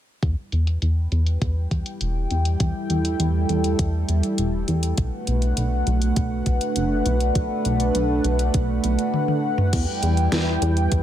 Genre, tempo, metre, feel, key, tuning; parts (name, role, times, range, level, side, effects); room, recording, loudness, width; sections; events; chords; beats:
synthwave; 101 BPM; 4/4; straight; E minor; A4 = 439 Hz
chorused pulse-width pad; sustained chords; 0.2-11.0 s; G3 to G5; -24 LUFS; right 1 dB; sidechain pumping, shimmer reverb
chorused synth bass; bass; 0.2-11.0 s; E1 to E2; -22 LUFS; equal; sidechain pumping
electronic kick drum; drums; 0.2-11.0 s; -24 LUFS; equal; overdrive
pop drum kit; drums; 0.2-11.0 s; crash cymbal, hi-hat, snare drum, toms; -27 LUFS; left 1 dB; overdrive, low-pass filter on hats, low-pass filter on toms, low-pass filter on cymbals, low-pass filter on snare, low-pass filter on room
light reverb; -20 LUFS; side -11 dB against mid
0.2-9.7 A section; 9.7-11.0 B section
filter sweep on drum 0.2-9.7; filter sweep on analog synth bass 0.2-9.7; drum fill 9.1-9.7
0.2 Em; 5.0 Bm7; 9.7 Em
| 0.23 0.82 1.42 2.01 | 2.60 3.20 3.79 4.38 | 4.98 5.57 6.17 6.76 | 7.36 7.95 8.54 9.14 | 9.73 10.33 10.92